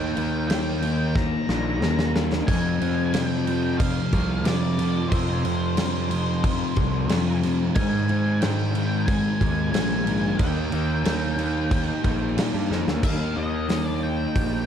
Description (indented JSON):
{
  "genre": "rock, shoegaze and dream pop",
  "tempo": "91 BPM",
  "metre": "4/4",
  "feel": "straight",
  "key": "unclear",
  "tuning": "A4 = 440 Hz",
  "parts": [
    { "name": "octave-fuzz lead guitar", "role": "melody", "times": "0.0-14.7 s", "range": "C5 to Bb5", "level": "-32 LUFS", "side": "left 1 dB", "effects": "distortion, slapback echo" },
    { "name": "fuzz guitar", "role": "riff", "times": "0.0-14.7 s", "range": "F2 to Eb4", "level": "-25 LUFS", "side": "left 1 dB", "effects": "distortion, wide subtle chorus" },
    { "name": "fuzz picked electric bass", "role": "bass", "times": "0.0-14.7 s", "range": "Bb1 to Bb2", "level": "-27 LUFS", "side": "equal", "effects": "overdrive" },
    { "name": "big rock drum kit", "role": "drums", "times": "0.2-14.5 s", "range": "crash cymbal, hi-hat, kick drum, snare drum, splash cymbal", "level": "-26 LUFS", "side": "equal", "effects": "none" }
  ],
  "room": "small room ambience",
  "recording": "dark, warm production",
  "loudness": "-21 LUFS",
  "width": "side -8 dB against mid",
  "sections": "0.0-13.0 A section; 13.0-14.7 B section",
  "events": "drum fill 1.2-2.5, 12.7-13.0",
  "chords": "0.0 Eb; 2.5 F5; 7.8 Ab5; 10.4 Eb"
}